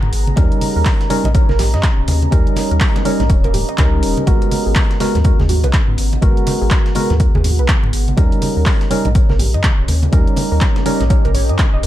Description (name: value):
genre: deep house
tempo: 123 BPM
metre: 4/4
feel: swing 60% on 16ths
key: unclear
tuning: A4 = 439 Hz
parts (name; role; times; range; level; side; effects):
- round analog bass; bass; 0.0-11.9 s; D#1 to G#2; -17 LUFS; equal; tube saturation, sidechain pumping
- congas; percussion; 0.0-11.7 s; none; -24 LUFS; right 2 dB; sidechain pumping on perc
- deep dark ambient pad; texture; 0.0-11.9 s; B3 to A#5; -26 LUFS; equal; chorus, built-in reverb, sidechain pumping
- deep house drum kit; drums; 0.1-11.9 s; handclaps, hi-hat; -24 LUFS; equal; overdrive, studio reverb
- dusty soul sampler-style drum kit; drums; 0.1-11.9 s; hi-hat, snare drum; -33 LUFS; left 1 dB; high-pass filter on hats, studio reverb, high-pass filter on snare
- warbly dusty pluck; arpeggios; 0.4-11.9 s; F#4 to D#5; -27 LUFS; right 5 dB; chorus, sidechain pumping, ping-pong delay
- percussive organ stab; stabs; 0.4-11.0 s; G3 to A#4; -20 LUFS; right 1 dB; chorus, sidechain pumping, digital delay
- electronic kick drum; drums; 0.4-11.7 s; none; -14 LUFS; equal; overdrive, studio reverb
room: little or no reverb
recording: dark, warm production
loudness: -12 LUFS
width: side -13 dB against mid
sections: 0.0-11.9 A section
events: none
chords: 0.4 D#7; 4.3 G#m9; 8.2 D#7